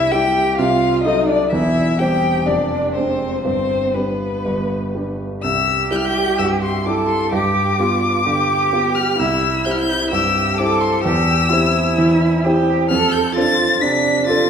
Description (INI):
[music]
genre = quick classical-period movement for piano trio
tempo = 128 BPM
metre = 4/4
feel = rubato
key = C major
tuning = A4 = 441 Hz
[part]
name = warm violin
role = melody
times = 0.0-14.5 s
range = B4 to B6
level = -20 LUFS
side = left 5 dB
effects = none
[part]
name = warm cello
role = second line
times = 0.0-14.5 s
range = B3 to A4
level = -21 LUFS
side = right 4 dB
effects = none
[part]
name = clear concert grand piano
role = accompaniment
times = 0.0-14.5 s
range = E1 to C5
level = -19 LUFS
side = equal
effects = none
[sound]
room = wet recital hall reverb, RT60 1.5 s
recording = recorded in a church or concert hall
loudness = -15 LUFS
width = side -7 dB against mid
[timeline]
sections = 0.0-5.4 A section; 5.4-14.5 B section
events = none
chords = 0.0 C; 0.6 Cdim7; 1.5 C/E; 2.5 Dm7b5/F; 3.4 G; 5.4 C; 7.3 G7; 9.2 C; 11.0 C/E; 12.9 Dm7/F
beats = 0.12 0.58 1.05 | 1.53 2.00 2.47 2.95 | 3.45 3.95 4.45 4.94 | 5.43 5.91 6.38 6.86 | 7.32 7.79 8.26 8.72 | 9.19 9.65 10.12 10.59 | 11.05 11.52 11.98 12.45 | 12.90 13.36 13.81 14.27